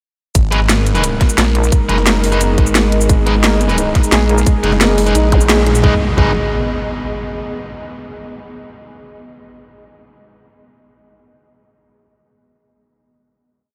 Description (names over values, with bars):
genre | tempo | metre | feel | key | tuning
dark technical drum and bass | 175 BPM | 4/4 | straight | G# minor | A4 = 440 Hz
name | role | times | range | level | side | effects
dark analog pad | sustained chords | 0.4-6.0 s | G#3 to A#4 | -22 LUFS | equal | chorus, sidechain pumping
phased detuned saw bass | bass | 0.4-6.3 s | F#1 to A#1 | -18 LUFS | equal | phaser, tube saturation
drum and bass drum kit | drums | 0.4-5.8 s | cabasa, hi-hat, snare drum | -20 LUFS | equal | overdrive
electronic kick drum | drums | 0.4-6.2 s | none | -15 LUFS | equal | none
ethereal airy pad | texture | 1.1-7.2 s | B3 to D#5 | -28 LUFS | equal | ensemble chorus, built-in reverb, sidechain pumping
distorted electric guitar | stabs | 0.5-6.3 s | D#4 to B4 | -25 LUFS | equal | distortion, delay
vowel-sweep wobble bass | bass | 1.4-1.7, 4.1-4.5 s | A#1 | -16 LUFS | equal | chorus
felt-muted upright piano | arpeggios | 3.1-6.3 s | G#3 to G#4 | -24 LUFS | equal | sidechain pumping, delay
zap and impact | sound effects | 5.3-7.2 s | none | -25 LUFS | equal | none
room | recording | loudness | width
moderate huge ambient reverb, RT60 7.6 s | dreamy mix soaked in reverb | -14 LUFS | mono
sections
0.4-5.8 drop; 5.8-7.2 final chord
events
drop 0.4-5.8; band accent 5.5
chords
0.4 G#m